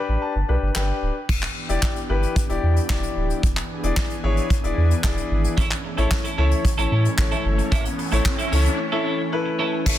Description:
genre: dance-pop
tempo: 112 BPM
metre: 4/4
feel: straight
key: unclear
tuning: A4 = 439 Hz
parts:
  - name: warm concert grand piano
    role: accompaniment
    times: 0.0-10.0 s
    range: D4 to B5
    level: -26 LUFS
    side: left 4 dB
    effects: sidechain pumping
  - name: warm sub bass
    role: bass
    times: 0.1-10.0 s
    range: D1 to A2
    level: -21 LUFS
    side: equal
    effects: sidechain pumping
  - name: soft brush drum kit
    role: drums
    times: 0.8-10.0 s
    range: crash cymbal, handclaps, hi-hat, kick drum, snare drum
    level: -24 LUFS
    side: equal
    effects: none
  - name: airy breathy pad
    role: sustained chords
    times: 1.3-10.0 s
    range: E3 to G#4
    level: -30 LUFS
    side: right 1 dB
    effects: chorus, sidechain pumping
  - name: twelve-string electric guitar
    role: riff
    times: 5.6-9.9 s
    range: C#4 to A4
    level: -28 LUFS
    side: right 5 dB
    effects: lush chorus
  - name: riser and downlifter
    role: sound effects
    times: 7.0-10.0 s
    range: none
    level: -32 LUFS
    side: equal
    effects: none
room: small room ambience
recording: dense, heavily limited modern master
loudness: -19 LUFS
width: side -12 dB against mid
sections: 0.0-1.3 A section; 1.3-9.9 B section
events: break 0.0-1.3, 8.8-9.9; grand piano fill 0.0-1.3; riser 7.0-9.9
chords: 0.0 G; 1.3 Em7; 3.4 E7; 5.6 A

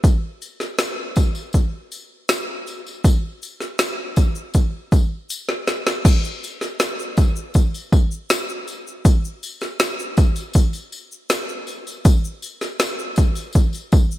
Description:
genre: pop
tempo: 80 BPM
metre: 4/4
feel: straight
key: none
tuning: none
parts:
  - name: deep house drum kit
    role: drums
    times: 0.0-14.2 s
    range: crash cymbal, kick drum, shaker, snare drum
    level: -17 LUFS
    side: equal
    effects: none
  - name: tambourine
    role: percussion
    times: 0.0-14.1 s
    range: none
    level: -34 LUFS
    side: left 4 dB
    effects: none
room: light reverb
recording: bright 1980s-style digital production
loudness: -18 LUFS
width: side -15 dB against mid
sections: 0.0-6.0 A section; 6.0-14.2 B section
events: drum fill 5.3-6.0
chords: none

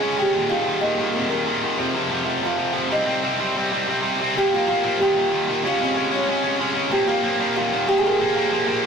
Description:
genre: punk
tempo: 187 BPM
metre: 4/4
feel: straight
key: unclear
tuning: A4 = 440 Hz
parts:
  - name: buzzing kalimba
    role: melody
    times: 0.0-8.9 s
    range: C4 to Bb5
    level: -22 LUFS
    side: right 1 dB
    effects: none
  - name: tight distorted guitar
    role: riff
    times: 0.0-8.9 s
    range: Eb2 to Db4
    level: -21 LUFS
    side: equal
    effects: distortion
room: moderate stone room reverb, RT60 0.9 s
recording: rough rehearsal-room recording, warm saturation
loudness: -19 LUFS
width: side -6 dB against mid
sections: 0.0-4.4 A section; 4.4-8.9 B section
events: none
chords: 0.4 Eb; 1.8 F5; 2.9 Cm; 4.4 Bb5; 5.0 Eb; 5.6 Db; 6.9 Bb5; 7.6 Eb; 8.2 Bb5

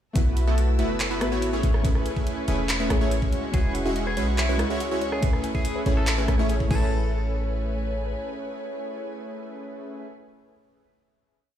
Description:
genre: future bass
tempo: 142 BPM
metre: 4/4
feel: half-time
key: A major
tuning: A4 = 441 Hz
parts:
  - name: soft round pluck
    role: accompaniment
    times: 0.1-10.1 s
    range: G#3 to E5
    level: -33 LUFS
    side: left 3 dB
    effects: chorus, sidechain pumping, ping-pong delay
  - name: dark studio string section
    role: sustained chords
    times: 0.2-10.1 s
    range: A3 to E6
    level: -37 LUFS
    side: left 1 dB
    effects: sidechain pumping
  - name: supersaw stab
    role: riff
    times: 0.2-10.1 s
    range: G#3 to C#5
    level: -28 LUFS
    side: right 1 dB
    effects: sidechain pumping, ping-pong delay
  - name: warm 808-style bass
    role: bass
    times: 0.2-8.1 s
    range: E1 to C#2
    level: -25 LUFS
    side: equal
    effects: tube saturation, sidechain pumping
  - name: dubstep drum kit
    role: drums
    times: 0.2-6.8 s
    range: crash cymbal, handclaps, hi-hat, rim click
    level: -31 LUFS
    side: right 1 dB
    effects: studio reverb
  - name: electronic kick drum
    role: drums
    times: 0.2-6.8 s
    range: none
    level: -24 LUFS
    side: equal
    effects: studio reverb
  - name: clean electric guitar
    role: melody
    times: 3.5-10.1 s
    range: E4 to A4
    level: -34 LUFS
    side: left 1 dB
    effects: phaser, sidechain pumping, digital delay
  - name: soft round pluck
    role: arpeggios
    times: 3.5-7.1 s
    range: F#4 to G#5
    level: -37 LUFS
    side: left 2 dB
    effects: chorus, sidechain pumping, ping-pong delay
room: light reverb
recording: played on a big sound system in a bare room, large studio reverb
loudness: -22 LUFS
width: side -10 dB against mid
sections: 0.2-6.9 drop; 6.9-10.3 final hit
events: drop 0.2-6.9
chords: 0.2 B7sus4; 1.6 Amaj9; 3.3 E69; 5.2 Amaj9

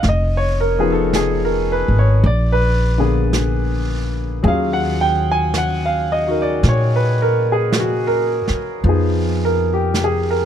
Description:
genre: jazz ballad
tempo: 54 BPM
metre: 4/4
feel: swing 68% on 8ths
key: Eb minor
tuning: A4 = 438 Hz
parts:
  - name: warm concert grand piano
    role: accompaniment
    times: 0.0-10.5 s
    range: D3 to Ab5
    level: -18 LUFS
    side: equal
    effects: none
  - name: upright bass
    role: bass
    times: 0.0-10.5 s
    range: F1 to Bb2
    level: -18 LUFS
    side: equal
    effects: none
  - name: jazz brush drum kit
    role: drums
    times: 0.0-10.5 s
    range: brushed snare drum, hi-hat, snare drum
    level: -27 LUFS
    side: right 3 dB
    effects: none
room: little or no reverb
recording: close, detailed microphones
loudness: -15 LUFS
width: side -9 dB against mid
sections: 0.0-10.5 A section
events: none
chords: 0.0 Fm7b5; 2.2 Bb7b9; 4.4 Ebm11; 8.8 Fm7b5

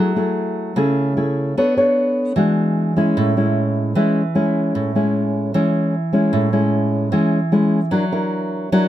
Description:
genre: bossa nova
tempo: 151 BPM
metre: 4/4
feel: straight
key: A major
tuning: A4 = 443 Hz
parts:
  - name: nylon-string guitar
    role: solo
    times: 0.0-8.9 s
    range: A2 to C#5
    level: -16 LUFS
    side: equal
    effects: none
room: light reverb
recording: close, detailed microphones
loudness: -16 LUFS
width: side -12 dB against mid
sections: 0.0-6.3 A section; 6.3-8.9 A section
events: none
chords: 0.0 F#m9; 1.6 Bm9; 2.4 E9; 3.2 Amaj7; 7.9 F#7b13

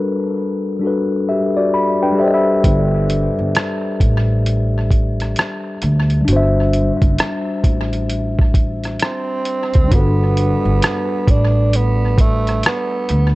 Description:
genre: lo-fi hip hop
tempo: 66 BPM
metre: 4/4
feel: swing 63% on 16ths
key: G major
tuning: A4 = 437 Hz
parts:
  - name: mellow tine electric piano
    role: accompaniment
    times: 0.0-13.3 s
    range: G3 to B5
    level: -19 LUFS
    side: left 2 dB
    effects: tape echo
  - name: upright bass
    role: bass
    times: 2.6-13.3 s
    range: F#1 to D2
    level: -17 LUFS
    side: equal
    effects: none
  - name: lo-fi sampler-style drum kit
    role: drums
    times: 2.6-13.3 s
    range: hi-hat, kick drum, rim click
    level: -17 LUFS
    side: equal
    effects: vintage 12-bit sampler grit, tape echo
  - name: growling tenor saxophone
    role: melody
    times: 9.0-13.3 s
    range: A3 to D4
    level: -21 LUFS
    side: right 3 dB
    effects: tape echo
room: light reverb, small room ambience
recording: echo-heavy mix, cassette tape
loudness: -14 LUFS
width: side -19 dB against mid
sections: 0.0-9.9 A section; 9.9-13.3 B section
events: tine electric piano fill 1.3-2.6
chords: 0.0 Gmaj7; 2.2 C69/G; 6.3 D7; 9.9 Gmaj7

